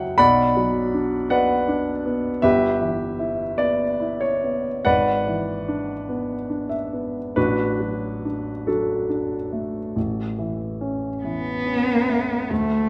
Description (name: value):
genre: classical, romantic duo for cello and grand piano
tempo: 45-55 BPM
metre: 4/4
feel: rubato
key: unclear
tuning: A4 = 439 Hz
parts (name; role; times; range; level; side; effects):
- warm baby grand piano; accompaniment; 0.0-12.9 s; G1 to B5; -23 LUFS; equal; none
- warm cello; melody; 11.2-12.9 s; A3 to B3; -24 LUFS; equal; none
room: wet recital hall reverb, RT60 1.4 s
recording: none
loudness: -23 LUFS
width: mono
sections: 0.0-12.5 A section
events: none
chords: 0.2 Bm; 2.4 Em/G; 4.8 E7/G#; 7.4 D/A; 10.0 A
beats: 0.19 1.31 | 2.43 3.59 4.84 6.07 | 7.36 8.67 9.96 11.24 | 12.50